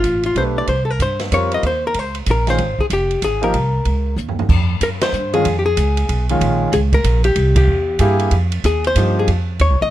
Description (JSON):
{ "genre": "jazz, small-group swing and bop", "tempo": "188 BPM", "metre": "3/4", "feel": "swing 63% on 8ths", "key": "Ab major, F minor from 4.5 s", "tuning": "A4 = 441 Hz", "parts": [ { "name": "hollow-body jazz guitar", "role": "melody", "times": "0.0-9.9 s", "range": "F4 to Eb5", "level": "-19 LUFS", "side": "left 2 dB", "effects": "plate reverb" }, { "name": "upright bass", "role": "bass", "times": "0.0-9.9 s", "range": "F1 to G2", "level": "-18 LUFS", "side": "right 1 dB", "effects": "none" }, { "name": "open jazz drum kit", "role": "drums", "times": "0.0-9.7 s", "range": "crash cymbal, hi-hat, kick drum, ride cymbal, snare drum, toms", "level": "-24 LUFS", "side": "right 1 dB", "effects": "none" }, { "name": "clear concert grand piano", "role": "accompaniment", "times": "0.4-9.3 s", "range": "Eb3 to B4", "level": "-20 LUFS", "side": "right 1 dB", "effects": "none" } ], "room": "little or no reverb", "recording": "close, detailed microphones", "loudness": "-15 LUFS", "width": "side -13 dB against mid", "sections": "0.0-4.5 A section; 4.5-9.9 B section", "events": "drum fill 4.2-4.5; band accent 5.0, 7.5", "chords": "0.0 G7; 0.7 C5; 1.6 Eb5; 2.6 Ab69; 4.5 Fsus2; 5.4 Bsus2; 6.4 Bbm7; 7.4 C7b13; 8.3 F5; 9.3 F7", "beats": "0.04 0.36 | 0.68 0.99 1.31 | 1.63 1.95 2.26 | 2.58 2.90 3.22 | 3.54 3.86 4.17 | 4.49 4.81 5.13 | 5.45 5.77 6.09 | 6.41 6.72 7.04 | 7.36 7.68 8.00 | 8.32 8.64 8.96 | 9.28 9.60" }